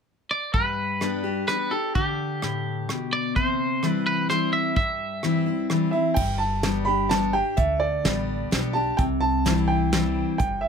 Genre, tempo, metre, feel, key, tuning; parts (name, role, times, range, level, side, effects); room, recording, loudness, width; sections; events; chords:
honky-tonk and classic country; 128 BPM; 3/4; straight; G major; A4 = 440 Hz
twangy electric guitar; melody; 0.3-5.7 s; G4 to E5; -26 LUFS; equal
picked steel-string acoustic guitar; accompaniment; 0.5-10.7 s; G2 to G4; -25 LUFS; left 3 dB
soft brush drum kit; drums; 0.5-10.5 s; crash cymbal, hi-hat, kick drum, rim click, snare drum; -27 LUFS; right 1 dB
warm upright piano; second line; 5.9-10.7 s; D5 to B5; -25 LUFS; right 3 dB
upright bass; bass; 6.2-10.7 s; G1 to D2; -28 LUFS; right 1 dB
little or no reverb; close, detailed microphones; -22 LUFS; side -6 dB against mid
0.5-6.2 A section; 6.2-10.7 B section
upright piano solo 6.2-10.7
0.0 N.C.; 0.5 G; 3.4 C; 6.2 G; 9.0 C